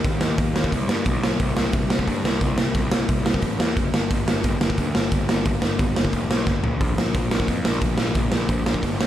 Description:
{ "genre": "punk rock", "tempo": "177 BPM", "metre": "4/4", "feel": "straight", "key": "unclear", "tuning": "A4 = 440 Hz", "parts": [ { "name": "fuzz picked electric bass", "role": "bass", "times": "0.0-9.1 s", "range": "F1 to G2", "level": "-25 LUFS", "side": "equal", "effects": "overdrive" }, { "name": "raw garage drum kit", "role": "drums", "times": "0.0-9.1 s", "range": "hi-hat, kick drum, snare drum, toms", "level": "-21 LUFS", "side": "equal", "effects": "none" } ], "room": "little or no reverb", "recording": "none", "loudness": "-19 LUFS", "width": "side -12 dB against mid", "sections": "0.0-9.1 A section", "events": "drum fill 6.5-6.8", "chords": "none" }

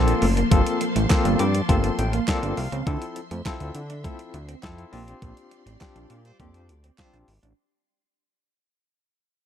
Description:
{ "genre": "early-eighties boogie funk", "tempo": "102 BPM", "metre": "4/4", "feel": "straight", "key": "unclear", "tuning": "A4 = 438 Hz", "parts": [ { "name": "barky tine electric piano", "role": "accompaniment", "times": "0.0-7.3 s", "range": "Bb3 to D6", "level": "-27 LUFS", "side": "left 4 dB", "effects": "fast tremolo" }, { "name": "string machine, full ensemble", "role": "sustained chords", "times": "0.0-7.5 s", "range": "F3 to C6", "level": "-30 LUFS", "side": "equal", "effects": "ensemble chorus" }, { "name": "fat analog bass", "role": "bass", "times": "0.0-7.5 s", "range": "F#1 to D3", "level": "-25 LUFS", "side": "equal", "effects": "none" }, { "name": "clean 12-bit digital drum machine", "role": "drums", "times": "0.1-7.6 s", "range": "hi-hat, kick drum, snare drum", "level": "-23 LUFS", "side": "equal", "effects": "overdrive" }, { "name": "electric guitar at the edge of break-up", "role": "riff", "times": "0.2-7.5 s", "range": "G3 to D4", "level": "-30 LUFS", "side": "right 4 dB", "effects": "analog chorus" }, { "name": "group handclap", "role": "percussion", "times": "1.1-7.1 s", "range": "none", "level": "-36 LUFS", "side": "right 7 dB", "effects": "none" }, { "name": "clear horn section", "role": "second line", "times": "6.2-7.2 s", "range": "G3 to C5", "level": "-62 LUFS", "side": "right 2 dB", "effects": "none" } ], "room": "digital ambience", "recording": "dark, warm production", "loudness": "-20 LUFS", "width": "side -9 dB against mid", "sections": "0.0-7.6 A section", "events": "fade-out 0.0-7.6; tine electric piano fill 1.1-2.9; band accent 5.2-7.6", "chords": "0.0 Gm11; 2.9 Dm9; 4.9 Bb69" }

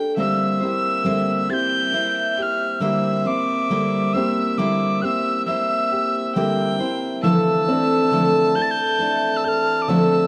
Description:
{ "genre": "acoustic folk duo or small band", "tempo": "68 BPM", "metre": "4/4", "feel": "straight", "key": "unclear", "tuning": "A4 = 440 Hz", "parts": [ { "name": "warm fiddle", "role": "second line", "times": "0.0-10.3 s", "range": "E5 to A5", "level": "-30 LUFS", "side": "equal", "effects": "none" }, { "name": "picked steel-string acoustic guitar", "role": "accompaniment", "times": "0.0-10.3 s", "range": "D3 to C5", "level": "-24 LUFS", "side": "equal", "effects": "none" }, { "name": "warm upright piano", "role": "arpeggios", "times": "0.0-10.3 s", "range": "E3 to A4", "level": "-28 LUFS", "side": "equal", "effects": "none" }, { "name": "breathy mellow mid whistle", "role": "melody", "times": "0.2-10.3 s", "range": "D6 to A6", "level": "-25 LUFS", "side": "equal", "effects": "none" } ], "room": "moderate plate reverb, RT60 2.5 s", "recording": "dark, warm production", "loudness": "-20 LUFS", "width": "mono", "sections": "0.2-10.3 A section", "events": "none", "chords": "0.2 C7/D; 7.2 Fmaj7/D" }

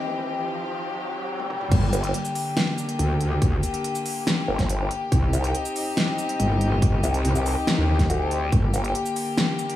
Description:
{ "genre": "heavy wobble dubstep", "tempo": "141 BPM", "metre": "4/4", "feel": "half-time", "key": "G minor", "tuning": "A4 = 441 Hz", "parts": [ { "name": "rich chamber string section", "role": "sustained chords", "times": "0.0-9.8 s", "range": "D3 to G4", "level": "-28 LUFS", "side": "left 3 dB", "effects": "sidechain pumping" }, { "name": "riser", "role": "sound effects", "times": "0.0-1.7 s", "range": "none", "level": "-32 LUFS", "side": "right 1 dB", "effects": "none" }, { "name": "big-room dance drum kit", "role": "drums", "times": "1.4-9.8 s", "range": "crash cymbal, hi-hat, shaker, snare drum, toms", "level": "-27 LUFS", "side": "equal", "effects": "studio reverb" }, { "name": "metallic wobble bass", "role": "bass", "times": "1.7-8.7 s", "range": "G1 to Eb2", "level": "-22 LUFS", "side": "equal", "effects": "chorus, overdrive" }, { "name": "electronic kick drum", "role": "drums", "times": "1.7-8.6 s", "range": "none", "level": "-22 LUFS", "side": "equal", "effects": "overdrive, studio reverb" }, { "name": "vowel-sweep wobble bass", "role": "bass", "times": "1.9-8.9 s", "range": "G1 to D2", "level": "-24 LUFS", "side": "equal", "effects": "chorus, overdrive" } ], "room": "light reverb", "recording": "high-pass filter, small room ambience", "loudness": "-21 LUFS", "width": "side -13 dB against mid", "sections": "0.0-1.7 A section; 1.7-9.8 B section", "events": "build-up 0.0-1.7; riser 0.0-1.7; break 0.0-1.7; drum fill 1.4-1.7; drop 1.7-9.8", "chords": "0.0 Cm; 1.7 Gm; 5.1 Cm; 8.5 Gm" }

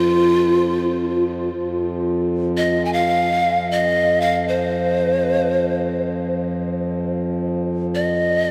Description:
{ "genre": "world meditative, free-time meditation music", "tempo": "free time", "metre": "none", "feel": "none", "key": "unclear", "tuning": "A4 = 440 Hz", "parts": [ { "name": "breathy mellow pan flute", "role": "melody", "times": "0.0-8.5 s", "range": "F4 to Ab5", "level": "-21 LUFS", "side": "equal", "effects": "delay" }, { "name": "pedal harmonium", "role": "drone", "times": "0.0-8.5 s", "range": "F2 to F3", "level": "-25 LUFS", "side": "equal", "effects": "none" } ], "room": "wet huge ambient reverb, RT60 8.8 s", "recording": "dreamy mix soaked in reverb", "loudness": "-20 LUFS", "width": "mono", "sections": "0.0-1.5 A section; 1.5-8.5 A section", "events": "none", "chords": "none" }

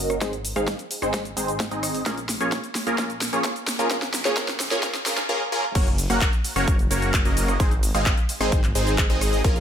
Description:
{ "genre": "EDM, festival progressive house", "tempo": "130 BPM", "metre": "4/4", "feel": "straight", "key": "unclear", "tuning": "A4 = 438 Hz", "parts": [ { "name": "supersaw stab", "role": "riff", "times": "0.0-9.6 s", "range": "Ab3 to Gb5", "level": "-24 LUFS", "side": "equal", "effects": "phaser, sidechain pumping, low-pass filter, digital delay" }, { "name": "detuned saw bass", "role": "bass", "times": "0.0-9.6 s", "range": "Eb1 to Bb1", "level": "-28 LUFS", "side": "equal", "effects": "tube saturation, sidechain pumping" }, { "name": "big-room dance drum kit", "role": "drums", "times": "0.1-9.6 s", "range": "cabasa, crash cymbal, handclaps, hi-hat, ride cymbal, rim click, snare drum", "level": "-27 LUFS", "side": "equal", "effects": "overdrive, small room ambience" }, { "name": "electronic kick drum", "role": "drums", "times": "0.2-9.5 s", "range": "none", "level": "-22 LUFS", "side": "equal", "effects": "overdrive, high-pass filter on kick, small room ambience" } ], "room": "light reverb", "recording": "high-pass filter", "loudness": "-21 LUFS", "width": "side -9 dB against mid", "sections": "0.0-5.8 A section; 5.8-9.6 B section", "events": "build-up 0.0-5.8; drum fill 0.0-5.3; filter sweep on supersaw synth 0.0-5.8; filter sweep 0.0-5.8; drop 5.8-9.6", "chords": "0.2 Ab; 2.1 Bbm7; 3.9 Eb5; 5.8 Gb; 7.6 Ab" }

